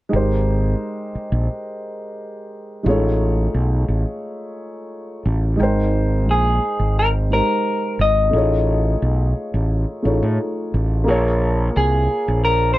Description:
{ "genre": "lush 1970s-style soul", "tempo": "88 BPM", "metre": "4/4", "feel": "straight", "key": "Ab major", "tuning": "A4 = 441 Hz", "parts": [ { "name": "dark concert grand piano", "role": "accompaniment", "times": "0.1-12.8 s", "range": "Ab3 to G5", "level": "-23 LUFS", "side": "equal", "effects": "none" }, { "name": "growling fingered electric bass", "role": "bass", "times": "0.1-12.7 s", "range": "Ab1 to A2", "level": "-18 LUFS", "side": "equal", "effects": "overdrive" }, { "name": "electric guitar through a small old amp", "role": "melody", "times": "6.3-12.8 s", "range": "Ab4 to Eb5", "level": "-19 LUFS", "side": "left 1 dB", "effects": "none" } ], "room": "light reverb", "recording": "dry, close 1970s-style studio recording", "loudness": "-17 LUFS", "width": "side -16 dB against mid", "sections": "0.1-5.6 A section; 5.6-12.8 B section", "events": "none", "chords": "0.1 Abmaj9; 2.9 F7alt/A; 5.6 Abmaj9; 8.3 F7alt/A; 11.1 Bbm9", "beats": "| 0.12 0.81 1.49 2.17 | 2.86 3.54 4.23 4.91 | 5.59 6.28 6.96 7.65 | 8.33 9.02 9.70 10.39 | 11.07 11.76 12.45" }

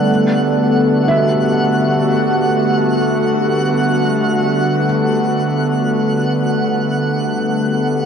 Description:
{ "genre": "ambient", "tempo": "free time", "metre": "none", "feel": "none", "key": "unclear", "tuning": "A4 = 440 Hz", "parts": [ { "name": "airy breathy pad", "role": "sustained chords", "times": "0.0-8.1 s", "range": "D3 to A4", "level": "-15 LUFS", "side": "equal", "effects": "chorus" }, { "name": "felt-muted upright piano", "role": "arpeggios", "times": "0.0-8.1 s", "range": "E5", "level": "-24 LUFS", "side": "equal", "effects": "ping-pong delay" }, { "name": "overtone-sweeping drone", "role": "drone", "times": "0.0-8.1 s", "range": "G3", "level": "-24 LUFS", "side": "right 1 dB", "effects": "chorus, built-in reverb" }, { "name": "twinkling granular texture", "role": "texture", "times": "0.0-8.1 s", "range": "F#5", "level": "-22 LUFS", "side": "equal", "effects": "built-in reverb" } ], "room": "wet huge ambient reverb, RT60 8.8 s", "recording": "worn, warbling old tape, cassette tape, warbly pitch drift", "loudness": "-13 LUFS", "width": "side -7 dB against mid", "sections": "0.0-8.1 A section", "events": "none", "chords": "0.1 Bm7", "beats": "free time" }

